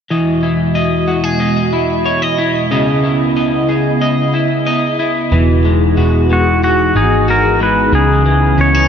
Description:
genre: dream pop.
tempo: 92 BPM.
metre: 4/4.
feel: straight.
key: E major.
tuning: A4 = 439 Hz.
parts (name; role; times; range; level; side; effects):
hollow soft pad; sustained chords; 0.1-8.9 s; C#2 to D#5; -17 LUFS; right 1 dB; ensemble chorus.
electric guitar at the edge of break-up; arpeggios; 0.1-8.9 s; C#3 to D#5; -15 LUFS; left 1 dB; analog chorus, ping-pong delay.
vintage muted picked electric bass; bass; 5.3-8.9 s; E1 to C#2; -14 LUFS; equal; none.
pedal steel guitar; melody; 6.3-8.9 s; F#4 to C#5; -14 LUFS; equal; ping-pong delay.
room: moderate huge ambient reverb, RT60 4.2 s.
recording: none.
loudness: -11 LUFS.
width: side -7 dB against mid.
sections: 0.1-5.3 A section; 5.3-8.9 B section.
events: none.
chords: 0.1 Emaj9; 2.7 C#m9; 5.3 Emaj9; 7.9 C#m9.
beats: | 0.10 0.75 1.41 2.06 | 2.71 3.36 4.01 4.67 | 5.32 5.97 6.62 7.28 | 7.93 8.58.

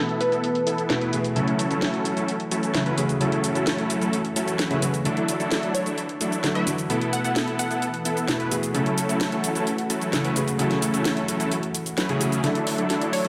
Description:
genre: EDM, festival progressive house.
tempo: 130 BPM.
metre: 4/4.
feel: straight.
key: F# minor.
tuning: A4 = 440 Hz.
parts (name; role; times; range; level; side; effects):
warm grand piano; accompaniment; 0.0-13.3 s; B2 to A4; -31 LUFS; equal; tape echo.
lush unison pad; sustained chords; 0.0-13.3 s; E3 to A4; -34 LUFS; equal; chorus, phaser.
supersaw chords; riff; 0.0-13.3 s; F#3 to B4; -28 LUFS; equal; low-pass filter, tape echo.
house drum kit; drums; 0.1-13.3 s; cabasa, hi-hat, snare drum; -31 LUFS; equal; overdrive, low-pass filter on hats, studio reverb, low-pass filter on perc, low-pass filter on snare, low-pass filter on cymbals, low-pass filter on toms.
plucky unison lead; melody; 0.2-0.7, 5.7-8.2, 13.1-13.3 s; B4 to F#5; -31 LUFS; equal; phaser, tape echo.
riser; sound effects; 13.2-13.3 s; none; barely audible; none; none.
room: moderate lush hall reverb, RT60 2.1 s.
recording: none.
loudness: -24 LUFS.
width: mono.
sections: 0.0-12.4 A section.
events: filter sweep on analog synth pad 0.0-12.4; drum fill 12.4-13.3.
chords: 0.0 Esus4; 1.4 F#m7; 5.1 Dadd9; 6.9 Esus4; 8.7 F#m7; 12.4 Dadd9.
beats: 0.44 0.90 | 1.36 1.82 2.28 2.75 | 3.21 3.67 4.13 4.59 | 5.05 5.51 5.98 6.44 | 6.90 7.36 7.82 8.28 | 8.74 9.21 9.67 10.13 | 10.59 11.05 11.52 11.98 | 12.44 12.90.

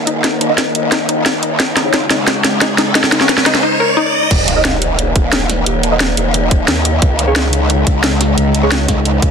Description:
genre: dark technical drum and bass.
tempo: 177 BPM.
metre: 4/4.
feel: straight.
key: unclear.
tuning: A4 = 442 Hz.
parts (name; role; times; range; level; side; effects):
metallic inharmonic drone; sustained chords; 0.0-9.3 s; Db3 to Eb4; -19 LUFS; left 1 dB; chorus, built-in reverb, sidechain pumping.
filtered dub chord stab; stabs; 0.0-8.7 s; Db4 to Eb5; -21 LUFS; right 2 dB; phaser, ensemble chorus, ping-pong delay.
growl bass; bass; 0.0-9.3 s; Eb1 to Eb2; -17 LUFS; equal; chorus, high-pass filter.
riser and impact; sound effects; 0.7-5.7 s; none; -20 LUFS; equal; none.
wide unison pluck; arpeggios; 0.1-4.0 s; Eb4 to Bb4; -20 LUFS; left 3 dB; sidechain pumping, ping-pong delay.
drum and bass drum kit; drums; 0.1-9.3 s; crash cymbal, hi-hat, snare drum; -15 LUFS; equal; none.
electronic kick drum; drums; 0.2-9.3 s; none; -15 LUFS; equal; high-pass filter on kick.
room: light reverb.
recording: dense, heavily limited modern master.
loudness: -11 LUFS.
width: side -6 dB against mid.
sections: 0.0-4.3 A section; 4.3-9.3 B section.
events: build-up 0.0-4.3; drum fill 0.0-3.6; riser 0.7-4.3; drop 4.3-9.3; impact 4.3-5.7.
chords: 0.0 Eb5; 1.6 Db5; 4.3 Eb5; 7.0 Db5.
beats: | 0.24 0.58 0.92 1.26 | 1.60 1.94 2.27 2.61 | 2.95 3.29 3.63 3.97 | 4.31 4.65 4.99 5.33 | 5.67 6.00 6.34 6.68 | 7.02 7.36 7.70 8.04 | 8.38 8.72 9.05.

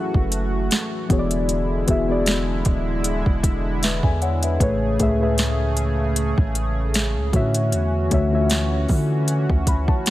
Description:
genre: contemporary R&B.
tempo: 77 BPM.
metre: 4/4.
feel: swing 54% on 16ths.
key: unclear.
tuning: A4 = 440 Hz.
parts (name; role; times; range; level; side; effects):
muted felt-like synth keys; accompaniment; 0.0-10.1 s; A2 to B5; -24 LUFS; left 2 dB; chorus.
chorused pulse-width pad; sustained chords; 0.0-10.1 s; C#3 to G#4; -27 LUFS; equal; sidechain pumping.
long sustained 808-style bass; bass; 0.1-9.9 s; D1 to D3; -23 LUFS; equal; none.
smooth R&B drum kit; drums; 0.1-10.1 s; hi-hat, kick drum, snare drum; -21 LUFS; equal; overdrive.
room: digital ambience.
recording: none.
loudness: -18 LUFS.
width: side -15 dB against mid.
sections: 0.0-10.1 A section.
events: synth keys fill 9.3-10.1.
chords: 0.0 F#m7; 1.1 E7; 4.6 Amaj7; 7.3 Dmaj9.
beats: 0.71 | 1.49 2.27 3.05 3.83 | 4.61 5.38 6.16 6.94 | 7.72 8.50 9.28 10.06.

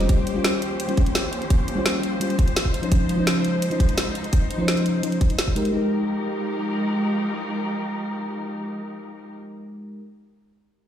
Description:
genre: liquid drum and bass.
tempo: 170 BPM.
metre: 4/4.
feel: straight.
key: F minor.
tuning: A4 = 439 Hz.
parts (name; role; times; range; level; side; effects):
mellow FM electric piano; accompaniment; 0.0-10.0 s; F3 to C5; -25 LUFS; left 1 dB; chorus, vintage 12-bit sampler grit, tape echo.
dark studio string section; sustained chords; 0.0-9.3 s; Db2 to C5; -29 LUFS; equal; none.
drum and bass drum kit; drums; 0.0-5.7 s; hi-hat, snare drum; -26 LUFS; equal; none.
electronic kick drum; drums; 0.1-5.5 s; none; -19 LUFS; equal; none.
room: light reverb, small room ambience.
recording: played on a big sound system in a bare room, large studio reverb.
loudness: -20 LUFS.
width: side -10 dB against mid.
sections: 0.0-5.7 A section; 5.7-8.6 B section.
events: none.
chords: 0.1 Eb13; 2.7 Dbmaj9; 5.7 Fm11.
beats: | 0.09 0.45 0.80 1.15 | 1.50 1.86 2.21 2.56 | 2.92 3.27 3.62 3.97 | 4.33 4.68 5.03 5.39 | 5.74 6.09 6.45 6.80 | 7.15 7.50 7.86 8.21.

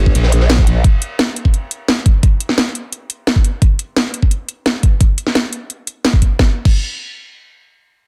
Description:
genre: dark technical drum and bass.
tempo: 173 BPM.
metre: 4/4.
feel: straight.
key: G minor.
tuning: A4 = 439 Hz.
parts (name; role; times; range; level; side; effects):
growl bass; bass; 0.0-0.8 s; G1 to Bb1; -15 LUFS; equal; chorus, overdrive.
drum and bass drum kit; drums; 0.1-6.8 s; crash cymbal, hi-hat, snare drum; -20 LUFS; equal; none.
electronic kick drum; drums; 0.1-6.8 s; none; -14 LUFS; equal; none.
crunchy breakbeat drum kit; drums; 0.2-0.8 s; ride cymbal, snare drum; -29 LUFS; equal; high-pass filter on cymbals, high-pass filter on hats, high-pass filter on snare, high-pass filter on room.
room: little or no reverb.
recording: dense, heavily limited modern master.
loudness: -15 LUFS.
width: mono.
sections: 0.0-6.4 A section; 6.4-8.1 B section.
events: none.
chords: none.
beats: 0.15 0.50 | 0.84 1.19 1.54 1.88 | 2.23 2.58 2.92 3.27 | 3.62 3.96 4.31 4.66 | 5.00 5.35 5.70 6.05 | 6.39 6.74.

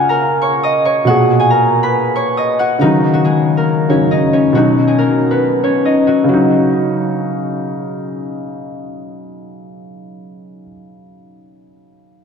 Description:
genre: hip hop.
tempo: 138 BPM.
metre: 4/4.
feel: half-time.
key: Eb minor.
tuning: A4 = 441 Hz.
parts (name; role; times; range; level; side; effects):
concert harp; melody; 0.0-10.0 s; Eb3 to Eb6; -14 LUFS; left 2 dB; low-pass filter, tape echo.
felt-muted upright piano; accompaniment; 0.0-12.2 s; Bb2 to Ab4; -16 LUFS; right 1 dB; low-pass filter.
room: wet church reverb, RT60 2.8 s.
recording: dreamy mix soaked in reverb.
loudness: -11 LUFS.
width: side -6 dB against mid.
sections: 0.0-2.8 A section; 2.8-6.3 B section; 6.3-9.8 C section.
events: none.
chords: 0.0 Bbm; 1.1 Abmadd9; 2.8 Ebm7; 4.5 B; 6.3 Ebm7.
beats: 0.20 0.64 | 1.07 1.50 1.94 2.38 | 2.81 3.25 3.68 4.11 | 4.55 4.98 5.42 5.85 | 6.29 6.72 7.16 7.59 | 8.03 8.46 8.90 9.33.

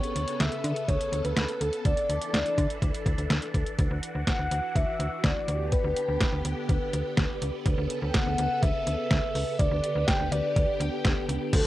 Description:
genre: synth-pop.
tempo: 124 BPM.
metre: 4/4.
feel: straight.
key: D major.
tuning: A4 = 439 Hz.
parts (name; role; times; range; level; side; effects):
mellow horn-like synth lead; melody; 0.0-11.7 s; A4 to G5; -30 LUFS; equal; chorus.
phased string machine; sustained chords; 0.0-11.7 s; C#3 to A4; -33 LUFS; equal; ensemble chorus, phaser, cassette tape.
detuned 8-bit digital drum machine; drums; 0.0-11.6 s; crash cymbal, hi-hat, kick drum, snare drum; -27 LUFS; equal; cassette tape.
slap-like FM bass; bass; 0.2-11.7 s; C#2 to D3; -30 LUFS; equal; none.
room: light reverb.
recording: home recording on cassette.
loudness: -25 LUFS.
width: side -15 dB against mid.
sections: 0.0-3.8 A section; 3.8-11.5 B section.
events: none.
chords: 0.0 Aadd9/D; 1.9 Dsus2; 3.8 Dadd9; 5.5 G/D; 7.7 Aadd9/D; 9.6 G/D.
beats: 0.40 0.88 1.37 | 1.85 2.33 2.82 3.30 | 3.79 4.27 4.75 5.24 | 5.72 6.21 6.69 7.17 | 7.66 8.14 8.63 9.11 | 9.59 10.08 10.56 11.04 | 11.53.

